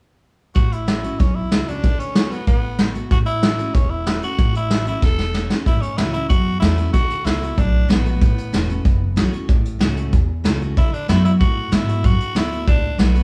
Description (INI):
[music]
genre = rockabilly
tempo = 188 BPM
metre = 4/4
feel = straight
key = A major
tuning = A4 = 440 Hz
[part]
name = picked steel-string acoustic guitar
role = accompaniment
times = 0.5-13.2 s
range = E2 to F#4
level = -29 LUFS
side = equal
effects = none
[part]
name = raspy tenor saxophone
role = melody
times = 0.6-13.2 s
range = B3 to A4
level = -28 LUFS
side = equal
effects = none
[part]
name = upright bass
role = bass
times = 0.6-13.2 s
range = E1 to A2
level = -24 LUFS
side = equal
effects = none
[part]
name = vintage brush drum kit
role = drums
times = 0.6-13.2 s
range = hi-hat, kick drum, snare drum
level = -21 LUFS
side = equal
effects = none
[sound]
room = light reverb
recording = band playing live in one room, small room ambience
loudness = -19 LUFS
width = mono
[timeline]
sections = 0.6-5.7 A section; 5.7-13.2 B section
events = drum fill 5.0-5.7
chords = 0.6 A6; 1.8 D6; 3.1 A6; 6.9 D6; 8.2 A6; 10.8 D6